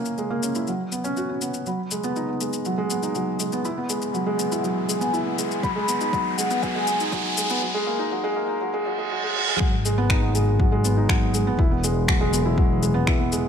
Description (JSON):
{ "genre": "piano and strings electronica", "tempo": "121 BPM", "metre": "4/4", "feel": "straight", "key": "G# minor", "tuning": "A4 = 440 Hz", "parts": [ { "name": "felt-muted upright piano", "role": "riff", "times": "0.0-13.5 s", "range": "F#3 to F#4", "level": "-24 LUFS", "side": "right 1 dB", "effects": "ping-pong delay" }, { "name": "electronic shaker and finger snaps", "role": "drums", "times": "0.1-13.4 s", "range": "none", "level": "-28 LUFS", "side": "left 4 dB", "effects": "overdrive, small room ambience" }, { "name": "warm velvety synth lead", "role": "melody", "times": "1.7-7.6 s", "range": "F#5 to B5", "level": "-30 LUFS", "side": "left 3 dB", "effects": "chorus, ping-pong delay" }, { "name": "riser and reverse cymbal", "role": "sound effects", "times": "4.1-9.6 s", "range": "none", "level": "-29 LUFS", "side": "right 2 dB", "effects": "none" }, { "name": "electronic kick drum", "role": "drums", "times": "5.6-13.2 s", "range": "none", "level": "-22 LUFS", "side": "left 1 dB", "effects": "overdrive, small room ambience" }, { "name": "muted studio double bass section", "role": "bass", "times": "9.6-13.5 s", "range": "E1 to G#1", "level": "-23 LUFS", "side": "left 1 dB", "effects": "sidechain pumping" } ], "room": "moderate scoring stage reverb, RT60 1.8 s", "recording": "high-pass filter", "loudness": "-21 LUFS", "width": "side -7 dB against mid", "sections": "0.0-1.7 A section; 1.7-9.6 B section; 9.6-13.5 C section", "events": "build-up 1.7-9.6; filter sweep 1.7-9.6; riser 4.1-7.6; reverse cymbal 8.8-9.6; drop 9.6-13.5", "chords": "0.0 A#m7b5; 0.7 F#sus4; 1.7 G#m7; 3.6 Eadd9; 5.6 G#m7; 7.6 F#69; 9.6 G#m7; 11.6 Eadd9" }